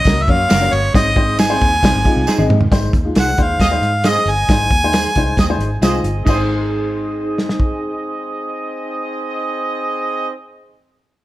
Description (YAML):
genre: uptempo 1960s-style soul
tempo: 135 BPM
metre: 4/4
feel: straight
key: Ab mixolydian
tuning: A4 = 441 Hz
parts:
  - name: clear harmonica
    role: melody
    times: 0.0-5.8 s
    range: Db5 to Ab5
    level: -17 LUFS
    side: equal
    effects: none
  - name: tambourine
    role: percussion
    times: 0.0-6.5 s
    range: none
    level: -31 LUFS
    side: right 4 dB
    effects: none
  - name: dark upright piano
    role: accompaniment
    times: 0.1-10.3 s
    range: Ab3 to Eb5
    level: -22 LUFS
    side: left 2 dB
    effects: none
  - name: vintage muted fingered electric bass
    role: bass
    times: 0.1-10.3 s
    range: Gb1 to Ab2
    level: -20 LUFS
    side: equal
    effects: none
  - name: warm soul drum kit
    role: drums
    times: 0.1-7.7 s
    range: crash cymbal, hi-hat, kick drum, ride cymbal, snare drum, toms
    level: -17 LUFS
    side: equal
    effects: none
  - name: electric guitar through a small old amp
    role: stabs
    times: 0.5-10.4 s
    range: Db4 to C5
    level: -25 LUFS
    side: right 1 dB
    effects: ensemble chorus
  - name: clear horn section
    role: second line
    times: 3.6-10.3 s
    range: C4 to Eb5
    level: -23 LUFS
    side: right 2 dB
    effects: none
room: moderate large studio reverb, RT60 1.1 s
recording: none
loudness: -14 LUFS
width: side -16 dB against mid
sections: 0.0-2.7 A section; 2.7-6.3 B section; 6.3-9.8 C section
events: drum fill 2.3-2.7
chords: 0.0 Gb; 0.9 Ab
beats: 0.05 0.49 | 0.94 1.38 1.82 2.27 | 2.71 3.15 3.60 4.04 | 4.49 4.93 5.37 5.82 | 6.26 6.70 7.15 7.59 | 8.04 8.48 8.92 9.37